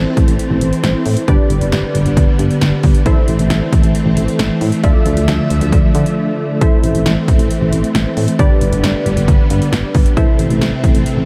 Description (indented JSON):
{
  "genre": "synth-pop",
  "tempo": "135 BPM",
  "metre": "4/4",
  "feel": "straight",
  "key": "A minor",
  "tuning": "A4 = 435 Hz",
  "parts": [
    { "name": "funky polysynth comp", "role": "accompaniment", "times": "0.0-11.3 s", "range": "C4 to E5", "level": "-23 LUFS", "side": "equal", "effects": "chorus" },
    { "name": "ensemble organ-string", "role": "sustained chords", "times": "0.0-11.3 s", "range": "C3 to E5", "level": "-20 LUFS", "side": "equal", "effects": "ensemble chorus" },
    { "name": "solid FM bass", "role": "bass", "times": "0.0-11.3 s", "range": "G1 to D3", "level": "-18 LUFS", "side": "equal", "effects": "none" },
    { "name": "punchy analog drum machine", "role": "drums", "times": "0.2-11.2 s", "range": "hi-hat, kick drum, snare drum", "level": "-17 LUFS", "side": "equal", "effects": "overdrive" }
  ],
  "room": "moderate huge ambient reverb, RT60 7.7 s",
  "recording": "dreamy mix soaked in reverb, faint mains hum",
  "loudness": "-14 LUFS",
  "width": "mono",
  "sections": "0.0-11.3 A section",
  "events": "break 6.2-6.6",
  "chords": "0.0 Am; 1.3 G; 3.1 Am; 4.8 Dmadd9; 6.6 Am; 8.4 G; 10.2 Am"
}